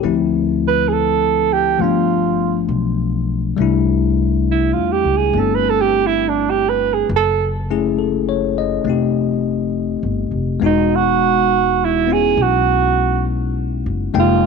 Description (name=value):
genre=jazz ballad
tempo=68 BPM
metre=4/4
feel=swing 69% on 8ths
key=unclear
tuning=A4 = 436 Hz
part: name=bell-like tine electric piano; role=accompaniment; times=0.0-14.5 s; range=F3 to G5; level=-19 LUFS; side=left 12 dB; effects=none
part: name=upright bass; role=bass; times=0.0-14.5 s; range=E1 to E2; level=-22 LUFS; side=left 1 dB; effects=tube saturation
part: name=breathy alto saxophone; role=melody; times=0.7-14.5 s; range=D4 to B4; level=-16 LUFS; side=right 12 dB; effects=none
room=light reverb, small room ambience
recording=1960s-style stereo with parts hard left and right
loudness=-15 LUFS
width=side -5 dB against mid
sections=0.0-3.6 A section; 3.6-14.5 B section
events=alto saxophone solo 3.6-14.5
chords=0.0 Dm7; 1.8 G9; 3.6 C6; 7.1 F#m7; 8.9 F9; 10.6 Emaj9